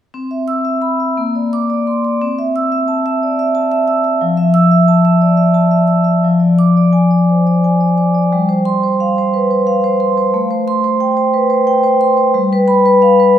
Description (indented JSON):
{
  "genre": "classical, contemporary piece for solo vibraphone",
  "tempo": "59 BPM (dotted quarters)",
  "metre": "6/8",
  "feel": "rubato",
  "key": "C major",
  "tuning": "A4 = 440 Hz",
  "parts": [
    { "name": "vibraphone with medium hard mallets", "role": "solo", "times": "0.1-13.4 s", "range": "F3 to E6", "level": "-11 LUFS", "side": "equal", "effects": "none" }
  ],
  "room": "wet recital hall reverb, RT60 1.5 s",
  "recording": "recorded in a church or concert hall",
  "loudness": "-11 LUFS",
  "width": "side -10 dB against mid",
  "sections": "0.2-13.4 A section",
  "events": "none",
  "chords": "0.2 Cmaj7; 1.2 Bbadd9; 2.2 C6; 4.2 Fmaj7; 6.2 Fm6; 8.3 G7sus4; 10.4 Am9; 12.4 G7"
}